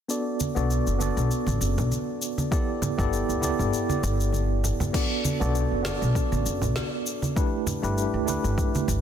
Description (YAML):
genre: sunset chillout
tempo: 99 BPM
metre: 4/4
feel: swing 55% on 16ths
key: B minor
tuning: A4 = 436 Hz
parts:
  - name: tine electric piano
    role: accompaniment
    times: 0.1-9.0 s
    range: A3 to D5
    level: -27 LUFS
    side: equal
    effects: medium stereo tremolo, auto-pan, low-pass filter, tape echo
  - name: deep house drum kit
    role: drums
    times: 0.1-9.0 s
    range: crash cymbal, shaker, snare drum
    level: -34 LUFS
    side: left 2 dB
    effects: none
  - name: congas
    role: percussion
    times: 0.4-8.9 s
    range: none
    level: -32 LUFS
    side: right 3 dB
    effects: none
  - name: upright bass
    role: bass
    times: 0.6-9.0 s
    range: F#1 to D2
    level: -26 LUFS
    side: equal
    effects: tube saturation
  - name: electronic kick drum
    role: drums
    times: 2.5-9.0 s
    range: none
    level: -26 LUFS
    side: equal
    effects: none
room: light reverb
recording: dense, heavily limited modern master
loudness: -23 LUFS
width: side -9 dB against mid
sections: 0.1-4.9 A section; 4.9-9.0 B section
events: kick drops out 3.7-4.9; filter sweep on tine electric piano 4.9-9.0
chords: 0.1 Bm7; 2.5 G69; 4.9 Bm7; 7.4 G69